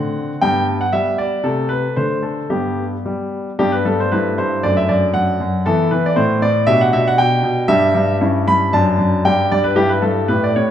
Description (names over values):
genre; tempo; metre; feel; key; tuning
classical-period piano sonatina; 116 BPM; 2/4; rubato; G major; A4 = 440 Hz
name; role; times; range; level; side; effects
bright concert grand piano; solo; 0.0-10.7 s; F#2 to B5; -14 LUFS; equal; none
room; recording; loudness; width
wet recital hall reverb, RT60 1.8 s; none; -14 LUFS; side -10 dB against mid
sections
0.0-3.6 A section; 3.6-10.7 A section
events
none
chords
0.4 G; 1.4 Am/C; 2.0 D5; 2.5 G; 4.1 Am7/G; 4.6 D/F#; 5.7 E5; 6.2 Am; 6.7 G/B; 7.7 Em7/G; 8.2 Em6/G; 8.7 D/F#; 9.2 G5; 9.8 Em/G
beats
| 0.41 0.93 | 1.44 1.97 | 2.51 3.06 | 3.60 4.12 | 4.64 5.15 | 5.67 6.17 | 6.68 7.18 | 7.69 8.21 | 8.73 9.25 | 9.77 10.29